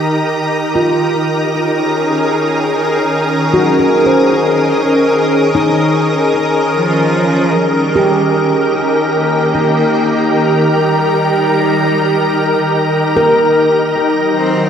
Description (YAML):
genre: ambient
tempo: 75 BPM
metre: 4/4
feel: straight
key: Eb mixolydian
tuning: A4 = 440 Hz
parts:
  - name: soft additive organ-like pad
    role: sustained chords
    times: 0.0-14.7 s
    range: Eb3 to Bb5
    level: -12 LUFS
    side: equal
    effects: ensemble chorus, built-in reverb
  - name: clear chamber violin section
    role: texture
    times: 0.0-7.6 s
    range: Eb6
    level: -26 LUFS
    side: right 1 dB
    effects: none
  - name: handpan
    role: arpeggios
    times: 0.8-14.1 s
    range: Eb4 to C5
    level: -17 LUFS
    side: equal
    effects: diffuse ambient delay
  - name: rich cello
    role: melody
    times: 6.8-14.7 s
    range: F3 to C4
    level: -21 LUFS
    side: equal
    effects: diffuse ambient delay
room: wet scoring stage reverb, RT60 1.9 s, small room ambience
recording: none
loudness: -11 LUFS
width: side -8 dB against mid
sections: 0.0-7.6 A section; 7.6-14.7 A section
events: fade-in on violin section 0.0-7.6; fade-in on cello 7.6-14.7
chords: 0.0 Eb; 1.2 Gb6; 7.6 Eb; 14.0 Gb6